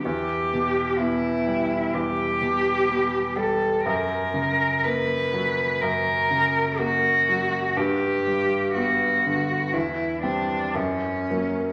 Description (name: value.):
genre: classical, romantic duo for cello and grand piano.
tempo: 54-64 BPM.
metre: 4/4.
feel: rubato.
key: unclear.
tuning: A4 = 440 Hz.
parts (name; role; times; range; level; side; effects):
warm cello; melody; 0.0-11.7 s; C#4 to B4; -25 LUFS; equal; none.
clear baby grand piano; accompaniment; 0.0-11.7 s; E2 to C4; -28 LUFS; equal; none.
room: wet recital hall reverb, RT60 1.6 s.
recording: vinyl crackle.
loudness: -23 LUFS.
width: mono.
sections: 0.0-11.7 A section.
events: none.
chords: 0.0 Em; 3.9 F#; 7.8 G; 9.7 C/E; 10.8 F#.